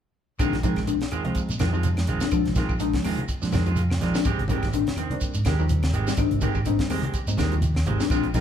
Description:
afrobeat; 125 BPM; 4/4; swing 56% on 16ths; Bb mixolydian; A4 = 440 Hz
electric guitar through a small old amp; arpeggios; 0.4-8.4 s; C3 to G3; -28 LUFS; left 12 dB; harmonic tremolo
electric guitar at the edge of break-up; stabs; 0.4-8.4 s; Eb3 to G4; -31 LUFS; right 6 dB
fingered electric bass; bass; 0.4-8.4 s; Ab1 to Bb2; -26 LUFS; equal
tight funk drum kit; drums; 0.4-8.4 s; hi-hat, kick drum, snare drum; -29 LUFS; equal
claves; percussion; 0.4-8.2 s; -46 LUFS; left 2 dB
shekere; percussion; 0.4-8.4 s; -34 LUFS; right 4 dB
congas; percussion; 0.5-8.4 s; -33 LUFS; left 1 dB
reed electric piano; accompaniment; 0.6-8.4 s; F3 to F5; -31 LUFS; right 2 dB; phaser
moderate large studio reverb, RT60 1.4 s; band playing live in one room; -22 LUFS; side -9 dB against mid
0.4-8.4 A section
reed electric piano fill 3.5-4.3
0.4 Bb9sus4; 4.3 Abmaj7
| 0.40 0.89 1.37 1.85 | 2.33 2.81 3.29 3.78 | 4.26 4.74 5.22 5.70 | 6.18 6.67 7.15 7.63 | 8.11

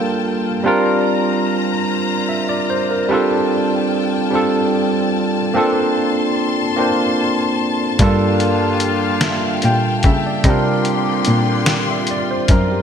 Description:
slow six-eight R&B; 49 BPM (dotted quarters); 6/8; straight; A4 = 440 Hz
barky tine electric piano; accompaniment; 0.0-12.8 s; G3 to G5; -17 LUFS; right 2 dB; lush chorus
warm studio string section; sustained chords; 0.0-12.8 s; Bb3 to C6; -23 LUFS; left 5 dB
warm horn section; stabs; 8.0-12.4 s; D3 to G4; -25 LUFS; left 5 dB
warm cello; bass; 8.0-12.8 s; F#2 to C#3; -20 LUFS; equal
dusty soul sampler-style drum kit; drums; 8.0-12.7 s; hi-hat, kick drum, snare drum; -17 LUFS; left 1 dB; gated reverb
moderate lush hall reverb, RT60 2.8 s; bright 1980s-style digital production; -15 LUFS; side -7 dB against mid
0.0-12.8 A section
0.0 Gm9; 0.6 C9sus4; 3.1 F69; 5.5 Bbmaj9; 8.0 Gm9; 10.4 C9sus4
| 0.65 1.87 | 3.10 4.32 | 5.54 6.77 | 7.99 9.22 | 10.44 11.67

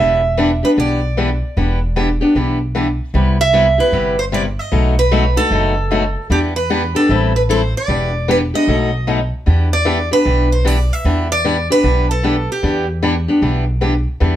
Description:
acoustic string swing (jazz manouche); 152 BPM; 4/4; swing 64% on 8ths; E minor; A4 = 441 Hz
picked steel-string acoustic guitar; melody; 0.0-12.9 s; G4 to E5; -18 LUFS; right 2 dB
picked steel-string acoustic guitar; accompaniment; 0.0-14.4 s; B2 to A4; -17 LUFS; left 2 dB
upright bass; bass; 0.0-14.4 s; E1 to E2; -17 LUFS; equal
light reverb; -13 LUFS; side -12 dB against mid
0.0-9.5 A section; 9.5-14.4 A section
0.0 Em7; 3.1 Cmaj7; 4.7 B7; 6.3 Em7; 7.1 Am7; 7.9 Em7; 8.7 B7; 9.5 Em7
0.38 0.77 1.17 | 1.56 1.96 2.35 2.75 | 3.14 3.54 3.93 4.33 | 4.72 5.12 5.51 5.91 | 6.30 6.70 7.09 7.49 | 7.88 8.28 8.67 9.07 | 9.46 9.86 10.25 10.65 | 11.04 11.44 11.83 12.23 | 12.62 13.02 13.41 13.81 | 14.20

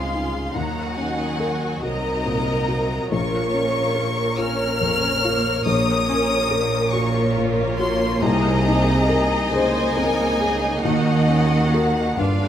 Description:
cinematic; 47 BPM (dotted quarters); 6/8; rubato; A4 = 437 Hz
rich symphonic violin section; melody; 0.0-12.5 s; Eb5 to F6; -26 LUFS; left 2 dB
warm symphonic violin section; second line; 0.0-12.5 s; F4 to Gb5; -24 LUFS; left 1 dB
felt-muted upright piano; accompaniment; 0.0-12.5 s; Bb1 to Bb4; -25 LUFS; left 3 dB
warm symphonic viola section; accompaniment; 0.0-12.5 s; Gb3 to F4; -27 LUFS; right 1 dB
dark symphonic double bass section; bass; 0.0-12.5 s; G1 to Eb2; -27 LUFS; right 3 dB
warm studio cello section; bass; 0.0-12.5 s; G2 to Eb3; -26 LUFS; right 2 dB
wet recital hall reverb, RT60 1.6 s; -18 LUFS; side -10 dB against mid
0.0-12.5 A section
0.0 Abadd9/C; 0.6 Ebm7; 3.1 Bbm; 5.7 Gb/Bb; 8.2 Abadd9/C; 10.8 Ebm7
| 0.55 1.84 | 3.12 4.39 | 5.67 6.94 | 8.23 9.52 | 10.84 12.18

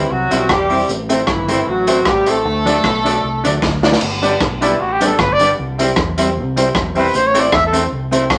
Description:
ska; 153 BPM; 4/4; swing 54% on 8ths; G major; A4 = 440 Hz
warm horn section; melody; 0.0-3.6 s; E3 to A4; -19 LUFS; equal
semi-hollow electric guitar; accompaniment; 0.0-8.2 s; F#3 to E4; -25 LUFS; equal; harmonic tremolo
bright upright piano; stabs; 0.0-8.2 s; C4 to D5; -23 LUFS; equal
fingered electric bass; bass; 0.0-8.4 s; E1 to E2; -26 LUFS; equal
raw garage drum kit; drums; 0.3-8.4 s; crash cymbal, hi-hat, kick drum, rim click, snare drum; -21 LUFS; equal
warm trumpet; melody; 4.6-7.8 s; E4 to E5; -17 LUFS; equal
wet studio reverb, RT60 0.7 s; -15 LUFS; mono
0.0-4.0 A section; 4.0-8.4 B section
drum fill 3.6-4.0; trumpet solo 4.0-8.4
0.0 C; 0.9 Am; 2.4 D; 4.0 G; 5.6 C; 7.1 Am
0.10 0.49 | 0.88 1.27 1.67 2.06 | 2.45 2.84 3.23 3.62 | 4.01 4.41 4.80 5.19 | 5.58 5.97 6.36 6.75 | 7.14 7.53 7.92 8.31

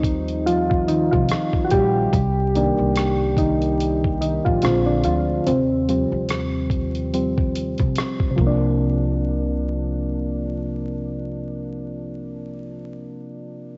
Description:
lo-fi hip hop; 72 BPM; 4/4; swing 56% on 16ths; C minor; A4 = 441 Hz
soft electric-piano-like synth keys; accompaniment; 0.0-13.8 s; C3 to G4; -24 LUFS; equal; chorus, cassette tape, low-pass filter
upright bass; bass; 0.0-13.1 s; A1 to Eb2; -27 LUFS; equal
dusty soul sampler-style drum kit; drums; 0.0-8.6 s; hi-hat, kick drum, rim click; -26 LUFS; equal
light reverb; home recording on cassette, vinyl crackle, nothing above 7.8 kHz; -21 LUFS; mono
0.0-8.8 A section; 8.8-12.1 B section
synth keys solo 0.0-8.8
0.0 Eb6; 2.1 Cm7; 4.6 Bb7; 5.5 Eb6; 8.4 C9sus4
0.46 1.29 | 2.13 2.96 3.79 4.63 | 5.46 6.29 7.13 7.96 | 8.79 9.63 10.46 11.29

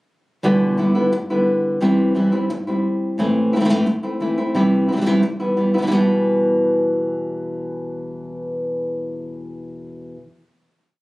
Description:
flamenco; 175 BPM; 4/4; straight; E minor; A4 = 441 Hz
nylon-string guitar; solo; 0.4-10.2 s; E2 to E4; -17 LUFS; equal
light reverb; recorded on a phone in the room, club reverb, compression; -17 LUFS; side -20 dB against mid
0.4-5.9 groove; 5.9-8.7 final chord
0.4 Em7; 1.8 C; 3.2 Am; 4.6 C; 5.2 Em
| 0.44 0.78 1.12 1.46 | 1.81 2.15 2.49 2.84 | 3.18 3.52 3.87 4.21 | 4.55 4.90 5.24 5.59 | 5.93 6.27 6.61 6.96 | 7.30 7.64 7.98 8.32

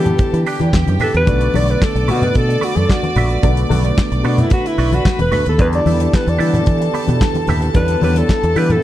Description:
disco; 111 BPM; 4/4; straight; B minor; A4 = 440 Hz
warm alto saxophone; melody; 0.0-8.8 s; D4 to D5; -20 LUFS; equal
clear studio string section; second line; 0.0-8.8 s; G4 to D6; -25 LUFS; right 1 dB
semi-hollow electric guitar; accompaniment; 0.0-8.8 s; B3 to E5; -26 LUFS; right 7 dB; wah, spring reverb
warm baby grand piano; accompaniment; 0.0-8.8 s; D3 to F#4; -25 LUFS; left 7 dB
tonewheel organ; sustained chords; 0.0-8.8 s; D3 to G4; -25 LUFS; right 2 dB; overdrive, chorus vibrato, slow rotary speaker
fingered electric bass; bass; 0.0-8.8 s; E1 to E3; -16 LUFS; equal
damped 70s drum kit; drums; 0.1-8.8 s; handclaps, hi-hat, kick drum, snare drum; -18 LUFS; equal
congas; percussion; 0.1-8.8 s; -22 LUFS; left 2 dB
light reverb, studio ambience; dark, warm production; -13 LUFS; side -13 dB against mid
0.0-8.8 A section
alto saxophone solo 0.0-8.8
0.0 Em7; 1.3 Bm7; 5.6 Em7
0.19 0.73 | 1.27 1.81 2.35 2.89 | 3.43 3.97 4.51 5.05 | 5.59 6.13 6.67 7.21 | 7.75 8.29 8.83

